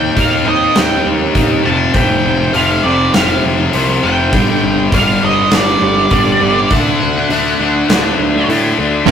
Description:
quiet-loud alternative rock; 101 BPM; 4/4; straight; A4 = 440 Hz
octave-fuzz lead guitar; melody; 0.0-8.5 s; D5 to A5; -16 LUFS; right 3 dB; distortion
picked steel-string acoustic guitar; arpeggios; 0.0-9.1 s; D3 to Bb4; -23 LUFS; right 6 dB
heavy high-gain guitar; riff; 0.0-9.1 s; F2 to Eb4; -15 LUFS; left 4 dB; distortion
fuzz picked electric bass; bass; 0.0-9.1 s; F1 to A2; -18 LUFS; right 1 dB; overdrive
huge arena drum kit; drums; 0.2-9.1 s; crash cymbal, hi-hat, kick drum, snare drum; -17 LUFS; equal
overdriven electric guitar; riff; 9.1 s; G2 to G3; -6 LUFS; right 4 dB
moderate studio ambience, RT60 0.5 s; rough rehearsal-room recording, warm saturation; -10 LUFS; side -8 dB against mid
0.0-9.1 A section
half time 0.0-9.1
0.0 Eb6; 1.7 F6; 4.3 Gm; 6.7 D
0.17 0.76 1.36 | 1.95 2.54 3.14 3.73 | 4.33 4.92 5.52 6.11 | 6.71 7.30 7.89 8.49 | 9.08

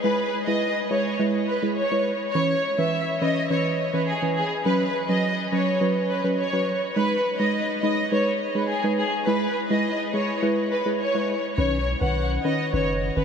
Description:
dancehall; 104 BPM; 4/4; straight; A4 = 440 Hz
warm studio violin section; melody; 0.0-13.2 s; G#4 to F#5; -24 LUFS; equal; analog delay
deep mellow chord stab; accompaniment; 0.0-13.2 s; D#3 to B4; -24 LUFS; right 1 dB; chorus
punchy sub bass; bass; 11.6-13.2 s; F#1 to B1; -26 LUFS; left 1 dB
wet huge ambient reverb, RT60 7.6 s; dreamy mix soaked in reverb; -21 LUFS; side -7 dB against mid
0.0-11.6 A section; 11.6-13.2 B section
0.0 E; 2.3 C#m7; 4.7 F#sus4; 7.0 G#m; 9.3 E; 11.6 Badd9
| 0.04 0.62 1.19 1.77 | 2.35 2.92 3.50 4.08 | 4.66 5.23 5.81 6.39 | 6.96 7.54 8.12 8.69 | 9.27 9.85 10.42 11.00 | 11.58 12.15 12.73

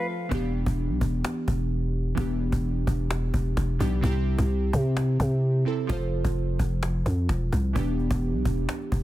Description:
hip hop, trap; 129 BPM; 4/4; half-time; E phrygian; A4 = 440 Hz
glassy digital keys; accompaniment; 0.0-9.0 s; C3 to C5; -30 LUFS; right 1 dB; chorus
growling 808-style bass; bass; 0.3-9.0 s; E1 to C3; -25 LUFS; equal
cajon; drums; 0.3-9.0 s; -30 LUFS; equal
small room ambience; dense, heavily limited modern master; -24 LUFS; side -15 dB against mid
0.3-9.0 A section
break 0.0-0.3; hi-hats muted 0.3-7.8
0.3 Em7; 4.0 C; 5.9 F; 7.8 Em7
| 0.32 0.78 1.25 1.71 | 2.17 2.64 3.10 3.57 | 4.04 4.50 4.97 5.43 | 5.90 6.36 6.83 7.29 | 7.76 8.22 8.69

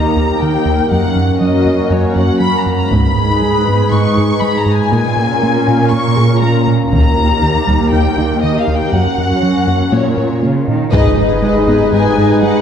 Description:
cinematic, hybrid orchestral and electronic film score; 120 BPM; 4/4; straight; A4 = 440 Hz
warm symphonic violin section; melody; 0.0-12.6 s; Db5 to Db6; -18 LUFS; left 3 dB
chorused pulse-width pad; sustained chords; 0.0-12.6 s; Ab3 to Cb5; -16 LUFS; left 1 dB
tight sequenced synth; arpeggios; 0.0-12.3 s; Eb3 to Bb4; -22 LUFS; left 1 dB; chorus, ping-pong delay
rubbery square bass; riff; 0.0-12.6 s; Eb2 to Bb3; -17 LUFS; right 2 dB
warm symphonic cello section; bass; 0.0-12.6 s; Eb2 to Eb3; -18 LUFS; right 2 dB
solo taiko drums; drums; 2.9-3.9, 6.9-7.9, 10.9-11.9 s; -18 LUFS; left 1 dB
warm symphonic violin section; second line; 10.9-12.6 s; Cb5 to Eb5; -20 LUFS; left 4 dB
dark symphonic viola section; accompaniment; 10.9-12.6 s; Eb4 to Ab4; -19 LUFS; left 2 dB
impact; sound effects; 10.9-12.6 s; -22 LUFS; equal
wet scoring stage reverb, RT60 1.7 s; heard from further back in the room; -11 LUFS; side -8 dB against mid
0.0-10.9 A section; 10.9-12.6 A section
band accent 10.9-11.4; impact 10.9-12.6
0.0 Eb; 0.9 Gb; 2.9 Abm; 4.9 Bbm7; 6.9 Eb; 8.9 Gb; 9.9 Bbm; 10.9 Abm
0.42 | 0.92 1.42 1.92 2.42 | 2.92 3.42 3.92 4.42 | 4.92 5.42 5.92 6.42 | 6.92 7.42 7.92 8.42 | 8.92 9.42 9.92 10.42 | 10.92 11.42 11.92 12.42

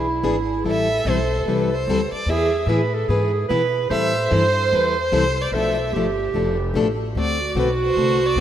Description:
acoustic string swing (jazz manouche); 148 BPM; 4/4; swing 64% on 8ths; A minor; A4 = 441 Hz
warm clarinet; second line; 0.0-8.4 s; E4 to C5; -22 LUFS; right 4 dB
picked plugged-in steel-string acoustic guitar; accompaniment; 0.0-8.4 s; B2 to B4; -24 LUFS; left 4 dB
upright bass; bass; 0.0-8.4 s; F1 to B2; -25 LUFS; equal
warm violin; melody; 0.7-8.4 s; B4 to E5; -25 LUFS; equal
wet lush hall reverb, RT60 2.7 s; rough home demo mix; -18 LUFS; side -10 dB against mid
0.0-8.4 A section
0.0 E7; 0.7 Am7; 2.3 E; 3.9 Am7; 5.5 Bm7b5; 7.2 D7
0.24 | 0.65 1.06 1.47 1.87 | 2.28 2.68 3.09 3.50 | 3.90 4.31 4.71 5.12 | 5.53 5.93 6.34 6.75 | 7.15 7.56 7.97 8.37

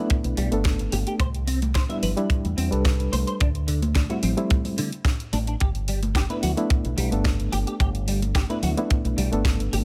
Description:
nu-disco, nu disco; 109 BPM; 4/4; straight; G major; A4 = 441 Hz
reed electric piano; accompaniment; 0.0-9.8 s; G3 to B4; -30 LUFS; equal; medium tremolo, sidechain pumping, delay
house drum kit; drums; 0.1-9.8 s; hi-hat, snare drum; -35 LUFS; equal; overdrive
kick drum; drums; 0.1-9.6 s; -25 LUFS; equal
fingered electric bass with an envelope filter; bass; 0.2-9.8 s; G1 to E2; -28 LUFS; equal
congas; percussion; 0.2-9.8 s; -35 LUFS; equal
clean electric guitar; riff; 0.4-9.8 s; D3 to E5; -34 LUFS; equal; ensemble chorus, delay
studio reverb; -24 LUFS; mono
0.0-9.8 A section
0.0 G6; 1.2 Cmaj7; 3.4 D7sus4; 5.6 G6
0.10 0.65 | 1.20 1.75 2.30 2.85 | 3.40 3.95 4.50 5.05 | 5.60 6.16 6.71 7.25 | 7.81 8.36 8.91 9.46

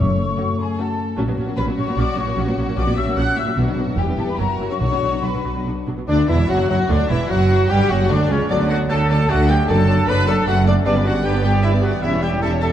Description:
quick classical-period movement for symphony orchestra; 151 BPM; 3/4; rubato; A4 = 445 Hz
clear studio violin section; second line; 0.0-12.7 s; G4 to B5; -29 LUFS; left 3 dB
large flute ensemble; second line; 0.0-12.7 s; C#5 to F#6; -28 LUFS; left 3 dB
mellow French horn section; sustained chords; 0.0-12.2 s; C#3 to E4; -27 LUFS; left 3 dB
clear studio double bass section; bass; 0.0-12.7 s; E1 to D2; -22 LUFS; right 2 dB
rich studio cello section; bass; 0.0-12.7 s; C#2 to D3; -22 LUFS; right 2 dB
timpani; percussion; 0.0-0.6, 3.6-5.4 s; F#2 to B2; -26 LUFS; left 2 dB
rich studio violin section; melody; 0.4-12.7 s; C#4 to E5; -30 LUFS; left 5 dB
rich studio viola section; accompaniment; 0.4-12.7 s; C#3 to B4; -28 LUFS; right 1 dB
bright clarinet; second line; 6.1-12.7 s; A3 to G4; -28 LUFS; left 3 dB
warm oboe; second line; 6.1-12.7 s; C#5 to B5; -30 LUFS; equal
warm bassoon; accompaniment; 6.1-12.7 s; C#3 to A3; -28 LUFS; equal
dark trumpet section; stabs; 6.1-12.7 s; C#4 to B4; -23 LUFS; equal
moderate concert hall reverb, RT60 1.9 s; dark, warm production; -16 LUFS; side -10 dB against mid
0.0-6.1 A section; 6.1-12.7 B section
0.0 F#m; 1.2 F#/A#; 3.6 Bm; 4.0 Em; 4.4 F#7; 4.8 Bm; 6.1 Dadd9/E; 7.3 Dmaj7/F#; 8.5 D; 9.7 D/F#; 10.9 G; 12.0 C#dim/E
| 0.01 0.40 0.79 | 1.19 1.59 1.98 | 2.38 2.78 3.17 | 3.58 3.98 4.39 | 4.81 5.23 5.65 | 6.08 6.49 6.90 | 7.30 7.70 8.11 | 8.50 8.90 9.30 | 9.69 10.08 10.47 | 10.86 11.24 11.63 | 12.02 12.42

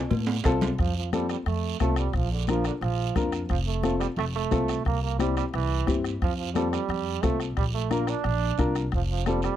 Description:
latin, cumbia; 177 BPM; 4/4; straight; F major; A4 = 440 Hz
upright bass; bass; 0.1-9.5 s; F1 to A2; -28 LUFS; equal
congas; percussion; 0.1-9.4 s; -34 LUFS; left 6 dB
cowbell and timbales; percussion; 0.1-0.7 s; -32 LUFS; right 6 dB
guiro; percussion; 0.1-9.6 s; -40 LUFS; right 14 dB
dark upright piano; accompaniment; 0.5-9.5 s; C4 to Bb4; -29 LUFS; left 3 dB
bombo; percussion; 0.5-9.6 s; -30 LUFS; left 1 dB
bright trombone; second line; 0.8-9.6 s; D3 to D4; -31 LUFS; right 11 dB
little or no reverb; dry, close 1970s-style studio recording, faint mains hum; -24 LUFS; side -11 dB against mid
0.8-9.6 A section
drum fill 0.0-0.8; trombone solo 0.8-9.6
0.0 F; 2.1 Bb; 3.5 F; 4.9 C; 6.2 F; 7.6 Bb; 8.9 F
0.11 0.45 | 0.79 1.12 1.46 1.80 | 2.14 2.48 2.82 3.16 | 3.50 3.83 4.17 4.51 | 4.85 5.19 5.53 5.87 | 6.21 6.55 6.89 7.23 | 7.57 7.91 8.24 8.58 | 8.92 9.26

